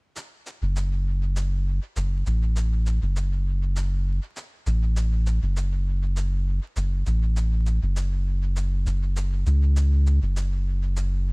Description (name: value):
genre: ambient dub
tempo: 100 BPM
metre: 4/4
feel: swing 53% on 16ths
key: F# minor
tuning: A4 = 442 Hz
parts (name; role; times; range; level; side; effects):
- shaker; drums; 0.2-11.1 s; none; -42 LUFS; equal; studio reverb, dub echo
- soft dub sub bass; bass; 0.6-11.3 s; F#1 to C#2; -22 LUFS; equal; none
room: digital ambience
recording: dark, warm production, vinyl crackle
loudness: -22 LUFS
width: side -36 dB against mid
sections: 0.2-11.3 A section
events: none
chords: none